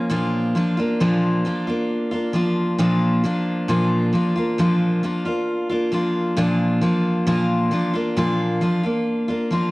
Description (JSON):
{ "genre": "pop", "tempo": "67 BPM", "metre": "4/4", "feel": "straight", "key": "unclear", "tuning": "A4 = 440 Hz", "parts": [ { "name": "picked steel-string acoustic guitar", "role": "solo", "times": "0.0-9.7 s", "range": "Bb2 to F4", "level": "-18 LUFS", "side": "equal", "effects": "none" } ], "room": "light reverb, studio reverb", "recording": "home recording on cassette", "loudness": "-18 LUFS", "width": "side -21 dB against mid", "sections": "0.0-9.7 A section", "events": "none", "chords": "0.1 Bb", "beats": "| 0.11 1.00 1.90 2.79 | 3.69 4.58 5.48 6.38 | 7.27 8.17 9.06" }